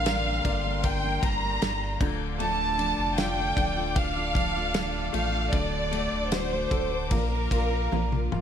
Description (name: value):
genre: pop ballad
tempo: 77 BPM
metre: 4/4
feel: straight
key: unclear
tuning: A4 = 440 Hz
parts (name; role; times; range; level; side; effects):
- warm studio violin section; melody; 0.0-8.3 s; Bb4 to Bb5; -29 LUFS; equal; none
- clear upright piano; accompaniment; 0.0-8.4 s; D3 to Bb4; -34 LUFS; left 7 dB; none
- warm studio string section; sustained chords; 0.0-8.4 s; A4 to D6; -36 LUFS; equal; none
- fingerpicked steel-string acoustic guitar; arpeggios; 0.0-8.4 s; G2 to G4; -36 LUFS; right 8 dB; none
- sub bass with octave; bass; 0.0-8.4 s; D1 to Bb1; -31 LUFS; equal; none
- loose indie drum kit; drums; 0.1-8.4 s; crash cymbal, kick drum, ride cymbal, snare drum, toms; -30 LUFS; equal; none
room: studio ambience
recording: none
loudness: -24 LUFS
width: side -8 dB against mid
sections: 0.0-8.4 A section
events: drum fill 7.9-8.4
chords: 0.0 Gm; 2.0 Dm; 5.5 D; 7.1 Bb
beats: 0.06 0.84 1.62 | 2.39 3.17 3.96 4.74 | 5.52 6.31 7.11 7.91